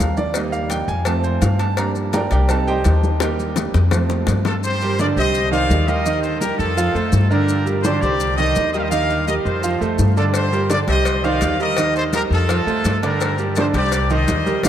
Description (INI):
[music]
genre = latin, salsa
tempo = 168 BPM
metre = 4/4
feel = straight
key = G minor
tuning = A4 = 440 Hz
[part]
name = bright concert grand piano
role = accompaniment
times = 0.0-14.7 s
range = D3 to Bb5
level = -21 LUFS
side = right 3 dB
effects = none
[part]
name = upright bass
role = bass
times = 0.0-14.7 s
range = C2 to G2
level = -20 LUFS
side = left 1 dB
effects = none
[part]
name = congas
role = percussion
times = 0.0-14.7 s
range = none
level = -28 LUFS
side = left 1 dB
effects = none
[part]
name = maracas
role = percussion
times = 0.0-14.7 s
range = none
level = -33 LUFS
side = left 8 dB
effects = none
[part]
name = cowbell and bongos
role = percussion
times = 0.3-4.6, 10.3-14.7 s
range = none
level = -28 LUFS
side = left 6 dB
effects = none
[part]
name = bright trumpet section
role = melody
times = 4.5-14.7 s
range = F4 to F5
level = -21 LUFS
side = left 1 dB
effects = none
[sound]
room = wet cathedral reverb, RT60 5.3 s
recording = in a vast, echoing space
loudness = -16 LUFS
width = side -10 dB against mid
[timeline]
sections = 0.0-4.6 A section; 4.6-14.7 B section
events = grand piano solo 0.0-4.6; drum fill 3.2-4.6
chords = 0.4 Eb; 1.1 F; 1.8 Gm; 2.5 Cm; 3.2 Eb; 3.9 F; 4.6 Gm; 5.3 Cm; 6.1 Eb; 6.8 F; 7.5 Gm; 8.2 Cm; 8.9 Eb; 9.6 F; 10.3 Gm; 11.1 Cm; 11.8 Eb; 12.5 F; 13.2 Gm; 13.9 Cm